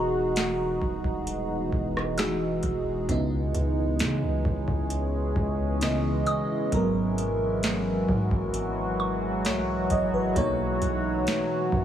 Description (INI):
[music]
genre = contemporary R&B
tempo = 66 BPM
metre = 4/4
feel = straight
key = C# dorian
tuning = A4 = 439 Hz
[part]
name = FM electric piano with soft pad layer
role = accompaniment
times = 0.0-11.8 s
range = G#2 to D#5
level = -28 LUFS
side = right 1 dB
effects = chorus
[part]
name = deep dark ambient pad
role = sustained chords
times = 0.0-11.8 s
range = B2 to G#4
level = -29 LUFS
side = equal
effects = chorus, built-in reverb
[part]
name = long sustained 808-style bass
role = bass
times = 0.0-11.8 s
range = D#1 to C#3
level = -31 LUFS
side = equal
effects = none
[part]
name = mallet-like synth pluck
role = texture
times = 0.0-10.8 s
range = A#5 to E6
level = -36 LUFS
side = equal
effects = chorus, phaser, tape echo
[part]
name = booming analog drum machine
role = drums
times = 0.4-11.8 s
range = hi-hat, kick drum, rim click, snare drum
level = -30 LUFS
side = equal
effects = overdrive
[sound]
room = light reverb, digital ambience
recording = none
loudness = -24 LUFS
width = side -10 dB against mid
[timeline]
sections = 0.0-11.8 A section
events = none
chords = 0.0 Emaj9; 3.1 C#m9; 6.7 G#m9; 10.4 Bmaj9